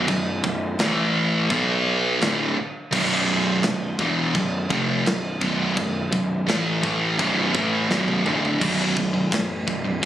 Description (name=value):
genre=heavy metal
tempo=85 BPM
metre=4/4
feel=straight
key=B minor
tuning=A4 = 440 Hz
part: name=sludgy distorted guitar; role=riff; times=0.0-10.1 s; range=B1 to B3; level=-22 LUFS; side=equal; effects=overdrive
part: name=fuzz picked electric bass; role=bass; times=0.0-10.1 s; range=B0 to B1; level=-27 LUFS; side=equal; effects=overdrive
part: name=tight metal drum kit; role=drums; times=0.1-10.1 s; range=china cymbal, crash cymbal, kick drum, ride cymbal, snare drum, toms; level=-27 LUFS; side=equal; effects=none
room=light reverb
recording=recorded on a phone in the room, studio reverb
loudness=-20 LUFS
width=side -11 dB against mid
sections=0.0-8.6 A section; 8.6-10.1 B section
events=drum fill 7.9-8.6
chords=0.0 B5; 0.8 A5; 1.5 Bm; 8.6 B5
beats=| 0.10 0.80 1.51 2.22 | 2.93 3.64 4.35 5.06 | 5.77 6.48 7.19 7.90 | 8.61 9.32 10.03